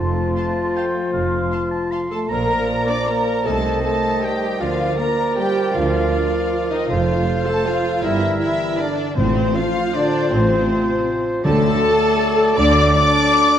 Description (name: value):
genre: classical, orchestral ballroom waltz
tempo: 157 BPM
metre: 3/4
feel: uneven beats, rubato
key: unclear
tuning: A4 = 439 Hz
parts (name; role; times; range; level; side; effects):
- clear oboe; second line; 0.0-13.6 s; Bb4 to C6; -29 LUFS; equal; none
- mellow flute section; second line; 0.0-13.6 s; C5 to D6; -25 LUFS; left 2 dB; none
- warm clarinet; second line; 0.0-13.6 s; E4 to D5; -25 LUFS; left 1 dB; none
- mellow bassoon; accompaniment; 0.0-13.6 s; Eb3 to G3; -27 LUFS; right 1 dB; none
- rich studio viola section; accompaniment; 0.0-13.6 s; A3 to D5; -23 LUFS; right 1 dB; none
- dark French horn section; sustained chords; 0.0-13.6 s; C3 to D4; -25 LUFS; left 2 dB; none
- warm studio cello section; bass; 0.0-12.9 s; F2 to D3; -26 LUFS; right 2 dB; none
- warm studio double bass section; bass; 0.0-12.9 s; F1 to D2; -25 LUFS; right 2 dB; none
- rich studio violin section; melody; 0.4-13.6 s; C5 to D6; -27 LUFS; left 2 dB; none
- warm studio violin section; second line; 0.4-13.6 s; C4 to A5; -30 LUFS; left 1 dB; none
- timpani; percussion; 9.2-12.0 s; A2 to D3; -25 LUFS; left 3 dB; none
room: wet scoring stage reverb, RT60 1.6 s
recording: worn, warbling old tape, cassette tape, warbly pitch drift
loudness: -16 LUFS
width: side -9 dB against mid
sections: 0.0-2.3 A section; 2.3-13.6 B section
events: none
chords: 0.0 F; 2.3 Bb; 3.5 Adim/C; 4.6 Bb/D; 6.9 F; 8.0 Edim/G; 9.2 F/A; 11.4 D